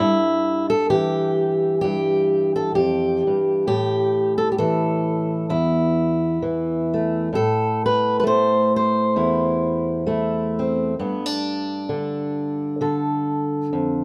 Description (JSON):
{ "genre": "folk, solo fingerstyle acoustic guitar", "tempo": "66 BPM", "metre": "4/4", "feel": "swing 56% on 8ths", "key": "A minor", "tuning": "A4 = 440 Hz", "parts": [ { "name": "fingerpicked steel-string acoustic guitar", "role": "solo", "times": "0.0-14.0 s", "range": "E2 to C5", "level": "-21 LUFS", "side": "equal", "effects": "none" } ], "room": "light reverb", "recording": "none", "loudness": "-21 LUFS", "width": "mono", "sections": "0.0-14.0 A section", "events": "none", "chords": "0.0 Em/G; 3.6 Am; 11.0 G5" }